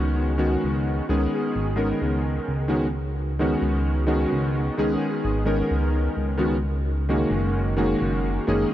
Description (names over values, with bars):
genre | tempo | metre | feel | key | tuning
vaporwave | 65 BPM | 4/4 | swing 54% on 16ths | unclear | A4 = 439 Hz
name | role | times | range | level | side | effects
warm electric grand piano | accompaniment | 0.0-8.7 s | D#3 to A#4 | -23 LUFS | equal | ensemble chorus, analog delay
chorused synth bass | bass | 0.0-8.7 s | F#1 to C#2 | -25 LUFS | equal | none
room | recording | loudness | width
moderate huge ambient reverb, RT60 5.4 s | dark, warm production | -21 LUFS | side -13 dB against mid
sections
0.0-8.7 A section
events
none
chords
0.0 C#9sus4; 7.3 F#69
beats
0.85 1.77 2.69 | 3.62 4.54 5.46 6.38 | 7.31 8.23